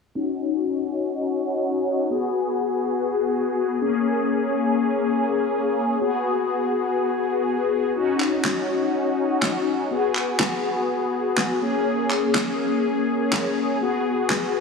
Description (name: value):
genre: dance-pop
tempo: 123 BPM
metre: 4/4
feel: straight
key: G# minor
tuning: A4 = 440 Hz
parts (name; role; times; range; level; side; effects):
- mellow synth brass; accompaniment; 0.2-14.6 s; A#3 to G#4; -21 LUFS; left 3 dB; chorus, phaser, low-pass filter
- electronic handclaps and snare drum; drums; 8.2-14.4 s; none; -26 LUFS; equal; overdrive
room: moderate lush hall reverb, RT60 2.2 s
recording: heavily compressed radio sound, multiband compression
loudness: -20 LUFS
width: side -4 dB against mid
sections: 0.2-8.0 A section; 8.0-14.6 B section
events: filter sweep on analog polysynth 0.2-8.0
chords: 0.2 D#m7; 2.1 G#m7; 3.8 A#m7; 6.0 G#m7; 8.0 D#m7; 9.9 G#m7; 11.6 A#m7; 13.8 G#m7